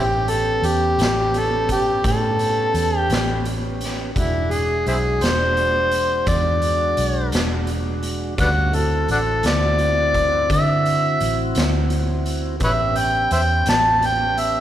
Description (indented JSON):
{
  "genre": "slow blues",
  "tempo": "57 BPM (dotted quarters)",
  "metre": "12/8",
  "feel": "straight",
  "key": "A mixolydian",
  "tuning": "A4 = 440 Hz",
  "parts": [
    { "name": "overdriven harmonica", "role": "melody", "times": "0.0-14.6 s", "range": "B3 to A5", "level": "-19 LUFS", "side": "equal", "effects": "none" },
    { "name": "tonewheel organ", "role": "sustained chords", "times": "0.0-14.6 s", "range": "G3 to F5", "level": "-28 LUFS", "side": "right 1 dB", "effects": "slow rotary speaker" },
    { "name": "vintage muted fingered electric bass", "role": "bass", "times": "0.0-14.6 s", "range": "E1 to D3", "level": "-23 LUFS", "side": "equal", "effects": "none" },
    { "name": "raw garage drum kit", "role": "drums", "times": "0.3-14.5 s", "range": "hi-hat, kick drum, snare drum", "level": "-26 LUFS", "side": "equal", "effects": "none" }
  ],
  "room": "moderate scoring stage reverb, RT60 2.1 s",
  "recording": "recorded in a church or concert hall",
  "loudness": "-17 LUFS",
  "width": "side -11 dB against mid",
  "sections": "0.0-14.6 A section",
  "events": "none",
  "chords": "0.0 A9; 4.2 E9; 8.4 D9; 12.6 A9"
}